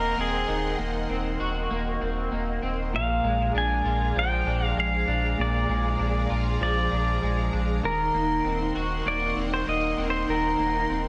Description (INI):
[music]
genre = dream pop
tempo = 98 BPM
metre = 4/4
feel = straight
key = unclear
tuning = A4 = 438 Hz
[part]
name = pedal steel guitar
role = melody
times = 0.0-11.1 s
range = Ab4 to Ab5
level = -30 LUFS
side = equal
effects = tape echo
[part]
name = string machine, violas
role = sustained chords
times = 0.0-11.1 s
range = Eb4 to C6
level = -35 LUFS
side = equal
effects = ensemble chorus
[part]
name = electric guitar at the edge of break-up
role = arpeggios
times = 0.0-11.1 s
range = Bb2 to Gb4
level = -32 LUFS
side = equal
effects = analog chorus, tape echo
[part]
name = warm sub bass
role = bass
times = 0.0-11.1 s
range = Eb1 to Bb1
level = -31 LUFS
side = equal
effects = none
[sound]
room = moderate plate reverb, RT60 2.9 s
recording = none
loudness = -26 LUFS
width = mono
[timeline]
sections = 0.0-11.1 A section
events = none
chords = 0.0 Ebm6; 2.9 Bb7; 7.8 Ebm6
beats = | 0.49 1.10 1.71 2.32 | 2.94 3.55 4.16 4.77 | 5.38 6.00 6.61 7.22 | 7.83 8.45 9.06 9.67 | 10.28 10.89